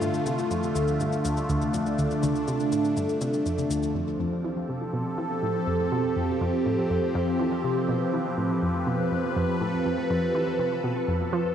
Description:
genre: ambient, sequencer-driven space music.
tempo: 122 BPM.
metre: 4/4.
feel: straight.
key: unclear.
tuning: A4 = 440 Hz.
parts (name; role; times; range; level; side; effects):
phased analog pad; sustained chords; 0.0-11.5 s; D3 to B4; -25 LUFS; equal; phaser, chorus, shimmer reverb.
analog pluck; riff; 0.0-11.5 s; D2 to F3; -29 LUFS; equal; chorus, analog delay.
electronic shaker and toms; percussion; 0.0-3.9 s; none; -39 LUFS; left 4 dB; analog delay.
bubbling stepped-filter texture; texture; 4.7-11.5 s; A4; -43 LUFS; left 1 dB; chorus, built-in reverb, shimmer reverb.
room: wet plate reverb, RT60 3.6 s.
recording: dreamy mix soaked in reverb.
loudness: -24 LUFS.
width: side -9 dB against mid.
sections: 0.0-4.0 A section; 4.0-11.5 B section.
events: fade-in on synth texture 4.0-11.5.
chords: 0.0 Dm; 4.0 F.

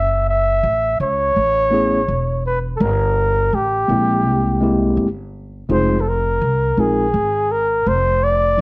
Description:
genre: hip hop, jazz-hop.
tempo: 83 BPM.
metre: 4/4.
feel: swing 63% on 16ths.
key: unclear.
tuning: A4 = 440 Hz.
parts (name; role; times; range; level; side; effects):
breathy flugelhorn; melody; 0.0-8.6 s; G4 to Fb5; -17 LUFS; equal; none.
upright bass; bass; 0.0-8.6 s; Fb1 to Db2; -21 LUFS; equal; none.
mellow tine electric piano; accompaniment; 1.7-8.6 s; F3 to Bb4; -18 LUFS; left 1 dB; none.
room: light reverb.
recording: worn, warbling old tape, cassette tape, warbly pitch drift.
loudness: -15 LUFS.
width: side -24 dB against mid.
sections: 0.0-8.6 A section.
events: none.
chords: 0.0 Gbm7; 2.8 Gm69; 4.2 C7b13; 5.7 Fm7.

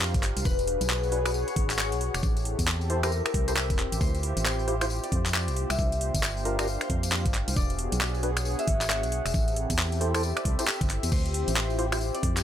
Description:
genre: UK garage, two-step garage.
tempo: 135 BPM.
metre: 4/4.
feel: swing 61% on 16ths.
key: D minor.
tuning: A4 = 441 Hz.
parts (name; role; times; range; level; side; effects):
concert harp; melody; 0.0-12.4 s; Bb4 to E5; -34 LUFS; left 3 dB; dub echo.
warm analog pad; sustained chords; 0.0-12.4 s; Bb3 to B4; -38 LUFS; left 1 dB; chorus, sidechain pumping.
organ-like FM bass; bass; 0.0-12.4 s; E1 to F2; -29 LUFS; equal; none.
garage drum kit; drums; 0.0-12.4 s; crash cymbal, finger snaps, handclaps, hi-hat, tambourine; -30 LUFS; equal; none.
warbly tape-like pad; texture; 0.0-12.4 s; G4 to F#5; -36 LUFS; left 1 dB; chorus, built-in reverb, sidechain pumping.
electronic kick drum; drums; 0.1-12.3 s; none; -28 LUFS; equal; none.
percussive organ stab; stabs; 1.1-12.0 s; D4 to C5; -34 LUFS; equal; ensemble chorus, cassette tape, dub echo.
room: little or no reverb.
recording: faint mains hum.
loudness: -24 LUFS.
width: side -10 dB against mid.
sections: 0.0-12.4 A section.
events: none.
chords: 0.5 E7; 2.2 Am7; 4.0 Dm11; 5.6 C9sus4; 7.6 E7; 9.3 Am7; 11.1 Dm11.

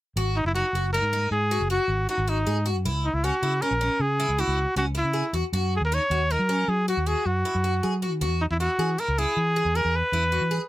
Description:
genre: progressive instrumental, progressive.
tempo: 157 BPM.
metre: 7/4.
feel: straight.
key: G# minor.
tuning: A4 = 442 Hz.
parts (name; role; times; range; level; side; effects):
picked twelve-string acoustic guitar; arpeggios; 0.2-10.6 s; C#4 to G#4; -30 LUFS; left 1 dB; none.
fretless electric bass; bass; 0.2-10.6 s; F#1 to F#3; -26 LUFS; equal; analog chorus.
clear trumpet; melody; 0.4-10.7 s; D#4 to C#5; -25 LUFS; equal; none.
room: little or no reverb.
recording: none.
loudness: -22 LUFS.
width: side -15 dB against mid.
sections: 0.2-10.7 A section.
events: none.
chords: 0.2 G#5; 2.9 C#m; 5.5 N.C.; 8.2 E.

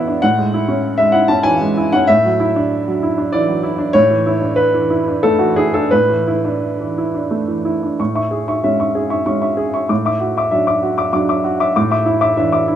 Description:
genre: neoclassical minimalist piano.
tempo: 85-99 BPM.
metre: 3/4.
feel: rubato.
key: A major.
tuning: A4 = 440 Hz.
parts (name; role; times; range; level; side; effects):
warm upright piano; solo; 0.0-12.8 s; A2 to D6; -14 LUFS; equal; tape echo.
room: moderate studio reverb, RT60 0.5 s.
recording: band playing live in one room.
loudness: -14 LUFS.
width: side -10 dB against mid.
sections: 0.0-8.0 A section; 8.0-12.8 B section.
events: none.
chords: 0.2 Amaj7; 2.1 Dadd9/A; 4.0 E7sus4/A; 8.0 Amaj7; 9.9 Dadd9/A; 11.7 E7sus4/A.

